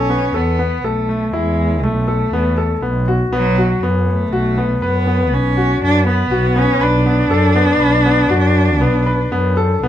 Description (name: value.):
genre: contemporary instrumental, chamber music in an uneven meter.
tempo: 120 BPM.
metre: 7/4.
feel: straight.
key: B dorian.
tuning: A4 = 440 Hz.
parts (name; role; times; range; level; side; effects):
rich cello; melody; 0.0-9.8 s; F#3 to D4; -18 LUFS; right 1 dB; none.
clear concert grand piano; arpeggios; 0.0-9.9 s; A3 to B4; -19 LUFS; left 3 dB; none.
warm double bass; bass; 0.0-9.9 s; B1 to F#2; -17 LUFS; equal; none.
room: light reverb.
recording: close, detailed microphones.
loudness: -13 LUFS.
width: side -11 dB against mid.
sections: 0.0-9.9 A section.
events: none.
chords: 0.0 Asus2/B; 3.3 B5; 6.8 Bm.